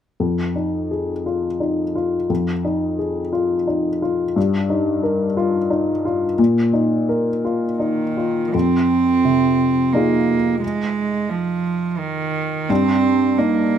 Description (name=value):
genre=neoclassical piano and strings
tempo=87 BPM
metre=3/4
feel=rubato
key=unclear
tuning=A4 = 440 Hz
part: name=warm upright piano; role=accompaniment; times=0.2-13.8 s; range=F2 to Bb4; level=-18 LUFS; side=left 2 dB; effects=none
part: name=clear cello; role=second line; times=7.8-13.8 s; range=Eb3 to C4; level=-18 LUFS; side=right 5 dB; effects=none
room=light reverb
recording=none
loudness=-17 LUFS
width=side -9 dB against mid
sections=0.2-8.5 A section; 8.5-13.8 B section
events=none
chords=0.2 Fm7; 4.4 Ebadd9/G; 6.4 Bbsus4; 8.5 Fm7; 12.7 Eb/G